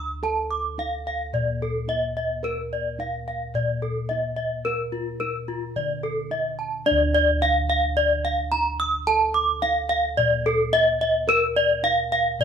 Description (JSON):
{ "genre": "Balinese gamelan", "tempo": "109 BPM", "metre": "4/4", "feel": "straight", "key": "D pelog", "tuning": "A4 = 441 Hz", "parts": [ { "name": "gamelan-type bronze metallophone", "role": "arpeggios", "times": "0.0-12.4 s", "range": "F4 to Eb6+35c", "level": "-22 LUFS", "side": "equal", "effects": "none" }, { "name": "gamelan-type bossed gongs", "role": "bass", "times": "0.0-12.4 s", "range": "D2 to Bb4", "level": "-29 LUFS", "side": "equal", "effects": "none" } ], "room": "wet studio reverb, RT60 0.7 s", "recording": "band playing live in one room", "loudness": "-21 LUFS", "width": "side -7 dB against mid", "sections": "0.0-12.4 A section", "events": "none", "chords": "none" }